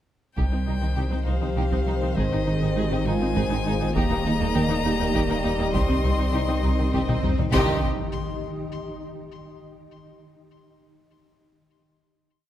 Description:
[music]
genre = cinematic, hybrid orchestral and electronic film score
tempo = 67 BPM (dotted quarters)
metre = 6/8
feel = straight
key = C minor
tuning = A4 = 440 Hz
[part]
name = rich violin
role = melody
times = 0.4-7.9 s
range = Eb5 to C6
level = -33 LUFS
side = left 7 dB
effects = digital delay
[part]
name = warm symphonic violin section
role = melody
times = 0.4-7.9 s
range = C5 to Eb5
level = -35 LUFS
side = left 2 dB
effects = none
[part]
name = warm symphonic violin section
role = second line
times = 0.4-7.9 s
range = Bb3 to Ab4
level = -34 LUFS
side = equal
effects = none
[part]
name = warm symphonic viola section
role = accompaniment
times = 0.4-7.9 s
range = Eb4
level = -36 LUFS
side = equal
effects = none
[part]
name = swarming drone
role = sustained chords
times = 1.2-7.9 s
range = Eb3 to Eb5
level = -33 LUFS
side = left 1 dB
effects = built-in reverb
[part]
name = warm trombone section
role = sustained chords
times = 0.4-7.8 s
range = G2 to C4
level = -33 LUFS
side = right 2 dB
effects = none
[part]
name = tight sequenced synth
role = arpeggios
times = 0.4-7.5 s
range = C3 to Ab4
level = -34 LUFS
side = right 1 dB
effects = none
[part]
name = dark symphonic cello section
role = bass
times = 0.4-7.9 s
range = Eb3 to C4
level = -30 LUFS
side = right 2 dB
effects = none
[part]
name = mellow tuba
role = bass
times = 0.4-7.8 s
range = Ab1 to Eb2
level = -31 LUFS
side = right 3 dB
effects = none
[part]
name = pure sine sub bass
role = bass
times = 0.4-7.9 s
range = Eb1 to C2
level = -28 LUFS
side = equal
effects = none
[part]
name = rich symphonic double bass section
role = bass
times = 0.4-7.9 s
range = Ab1 to Eb2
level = -31 LUFS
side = right 2 dB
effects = none
[part]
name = taiko ensemble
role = drums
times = 0.4-8.7 s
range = none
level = -29 LUFS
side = equal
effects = none
[part]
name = mellow French horn section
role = sustained chords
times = 1.3-7.8 s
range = G3 to C5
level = -33 LUFS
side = left 4 dB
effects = none
[part]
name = swell and impact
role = sound effects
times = 6.6-9.3 s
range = none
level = -34 LUFS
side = left 1 dB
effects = none
[sound]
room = light reverb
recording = none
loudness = -21 LUFS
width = side -11 dB against mid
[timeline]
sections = 0.4-7.5 theme; 7.5-9.3 final chord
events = swell 6.6-7.5; drum fill 7.1-7.5; impact 7.5-9.3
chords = 0.4 Cm; 2.2 Ab; 4.0 Eb; 5.8 Cm

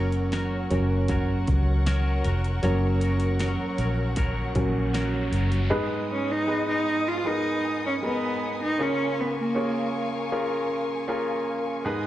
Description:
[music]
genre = pop ballad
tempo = 78 BPM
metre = 4/4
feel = straight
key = G# dorian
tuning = A4 = 440 Hz
[part]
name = warm grand piano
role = accompaniment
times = 0.0-12.1 s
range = G#2 to C#5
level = -28 LUFS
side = right 1 dB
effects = slapback echo
[part]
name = warm studio string section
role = sustained chords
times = 0.0-12.1 s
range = B3 to D#6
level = -34 LUFS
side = left 3 dB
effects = none
[part]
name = twelve-string electric guitar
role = arpeggios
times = 0.0-5.7 s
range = F#3 to A#4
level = -34 LUFS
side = left 2 dB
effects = spring reverb, slapback echo
[part]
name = vintage muted fingered electric bass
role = bass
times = 0.0-5.7 s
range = E#1 to C#2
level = -25 LUFS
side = equal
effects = none
[part]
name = pop drum kit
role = drums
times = 0.1-5.7 s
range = hi-hat, kick drum, snare drum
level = -30 LUFS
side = equal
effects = none
[part]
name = riser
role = sound effects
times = 4.0-5.7 s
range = none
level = -40 LUFS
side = equal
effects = slapback echo
[part]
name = warm cello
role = melody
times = 6.1-10.1 s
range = A#3 to E#4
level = -26 LUFS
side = right 1 dB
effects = slapback echo
[sound]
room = little or no reverb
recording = live gig heard through the venue's PA, club reverb, nothing above 10.4 kHz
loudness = -23 LUFS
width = side -14 dB against mid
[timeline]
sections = 0.0-5.7 A section; 5.7-12.1 B section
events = grand piano solo 0.0-5.7; riser 4.0-5.7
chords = 0.0 F#; 5.7 G#m; 8.8 C#6

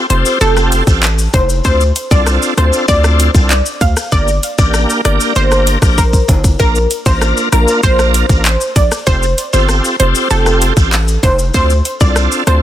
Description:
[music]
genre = dancehall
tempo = 97 BPM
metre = 4/4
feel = straight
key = D minor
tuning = A4 = 440 Hz
[part]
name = bright tonewheel organ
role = accompaniment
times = 0.0-12.6 s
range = Bb3 to Bb4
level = -17 LUFS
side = equal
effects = overdrive, chorus vibrato, slow rotary speaker
[part]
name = analog pluck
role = melody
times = 0.1-12.6 s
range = A4 to F5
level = -16 LUFS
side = equal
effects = chorus, digital delay
[part]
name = hard-hitting 808-style bass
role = bass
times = 0.1-12.6 s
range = F1 to D2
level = -14 LUFS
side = equal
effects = none
[part]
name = island pop drum kit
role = drums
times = 0.1-12.6 s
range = handclaps, hi-hat, kick drum, rim click, shaker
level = -14 LUFS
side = equal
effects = soft clipping on snare
[part]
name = maracas and timbales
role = percussion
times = 0.3-12.5 s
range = none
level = -26 LUFS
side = left 2 dB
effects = none
[sound]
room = digital ambience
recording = dense, heavily limited modern master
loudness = -10 LUFS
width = side -12 dB against mid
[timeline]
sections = 0.0-12.6 A section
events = drum fill 6.0-6.6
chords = 0.0 Fadd9; 1.6 Dm7; 4.1 Gm; 6.6 Bb; 9.1 Fadd9; 11.5 Dm7

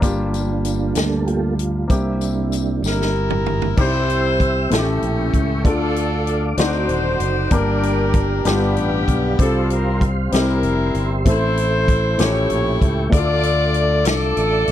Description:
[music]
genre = slow gospel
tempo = 64 BPM (dotted quarters)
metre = 6/8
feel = straight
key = unclear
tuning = A4 = 441 Hz
[part]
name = warm grand piano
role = accompaniment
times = 0.0-14.7 s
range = G2 to D5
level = -24 LUFS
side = left 2 dB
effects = none
[part]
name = mellow tonewheel organ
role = sustained chords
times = 0.0-14.7 s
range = G3 to E6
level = -26 LUFS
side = right 4 dB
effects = fast rotary speaker, chorus vibrato
[part]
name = fingered electric bass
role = bass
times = 0.0-14.7 s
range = Eb1 to D2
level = -22 LUFS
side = equal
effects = none
[part]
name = swinging big-band drum kit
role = drums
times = 0.0-14.7 s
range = crash cymbal, hi-hat, kick drum, snare drum, toms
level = -20 LUFS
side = equal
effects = none
[part]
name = tambourine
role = percussion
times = 0.0-3.1 s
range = none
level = -35 LUFS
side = left 17 dB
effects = none
[part]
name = warm horn section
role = melody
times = 2.9-14.7 s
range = B3 to D5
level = -21 LUFS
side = left 1 dB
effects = none
[sound]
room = studio ambience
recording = dry, close 1970s-style studio recording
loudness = -16 LUFS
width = side -11 dB against mid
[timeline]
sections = 0.0-3.8 A section; 3.8-14.7 B section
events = tonewheel organ solo 0.0-3.8; drum fill 2.8-3.8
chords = 0.0 Gm7; 1.9 C7; 3.8 C; 4.7 A7; 5.6 Dm; 6.6 D7b9; 7.5 Gm; 8.5 G7; 9.4 Csus4; 10.3 C; 11.3 Am; 12.2 A7b13; 13.1 Dm

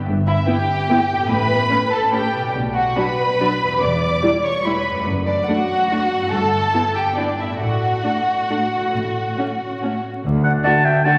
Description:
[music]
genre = classical, orchestral ballroom waltz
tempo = 129-158 BPM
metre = 3/4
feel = rubato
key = D major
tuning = A4 = 442 Hz
[part]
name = concert harp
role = arpeggios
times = 0.0-11.2 s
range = E2 to E5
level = -29 LUFS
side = equal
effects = none
[part]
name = rich symphonic cello section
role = bass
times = 0.1-10.6 s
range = D2 to B2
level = -30 LUFS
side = equal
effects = none
[part]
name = warm studio double bass section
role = bass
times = 0.1-10.6 s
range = E1 to D2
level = -30 LUFS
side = equal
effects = none
[part]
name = warm studio violin section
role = melody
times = 0.3-11.1 s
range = A4 to D6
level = -25 LUFS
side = equal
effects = none
[part]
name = warm studio violin section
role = second line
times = 0.3-11.1 s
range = D4 to D5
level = -24 LUFS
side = equal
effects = none
[part]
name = warm studio viola section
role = accompaniment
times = 0.5-11.1 s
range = F#3 to E4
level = -27 LUFS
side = equal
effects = none
[part]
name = clear oboe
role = second line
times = 10.4-11.2 s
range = F#5 to A5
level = -19 LUFS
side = equal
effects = none
[part]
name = hollow concert flute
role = second line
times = 10.4-11.2 s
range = D5 to F#5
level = -23 LUFS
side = equal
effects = none
[part]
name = dark French horn section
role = sustained chords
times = 10.7-11.2 s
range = A3 to F#4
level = -29 LUFS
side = equal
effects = none
[sound]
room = wet concert hall reverb, RT60 2.4 s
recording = vinyl crackle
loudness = -19 LUFS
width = mono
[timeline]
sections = 0.0-10.3 A section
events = none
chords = 0.1 Em/G; 1.3 A; 2.5 Bm; 3.8 Em7; 5.1 D/F#; 6.3 Em/G; 7.6 D/A; 8.9 A; 10.3 D

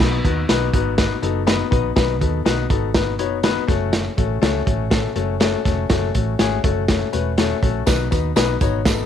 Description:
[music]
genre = uptempo 1960s-style soul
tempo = 122 BPM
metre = 4/4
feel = straight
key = B mixolydian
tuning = A4 = 439 Hz
[part]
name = clear concert grand piano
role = accompaniment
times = 0.0-9.0 s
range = A3 to C#5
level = -22 LUFS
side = left 11 dB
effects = none
[part]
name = vintage muted fingered electric bass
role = bass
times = 0.0-9.0 s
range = E1 to D#2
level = -24 LUFS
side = right 2 dB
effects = none
[part]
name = crunchy breakbeat drum kit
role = drums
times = 0.0-9.0 s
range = crash cymbal, hi-hat, kick drum, snare drum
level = -20 LUFS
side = right 2 dB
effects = none
[part]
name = tambourine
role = percussion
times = 7.9-9.0 s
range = none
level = -34 LUFS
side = right 18 dB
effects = none
[sound]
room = small room ambience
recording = 1960s-style stereo with parts hard left and right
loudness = -17 LUFS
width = side -9 dB against mid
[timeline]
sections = 0.0-9.1 A section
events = none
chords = 0.0 B; 3.7 F#m; 7.9 B

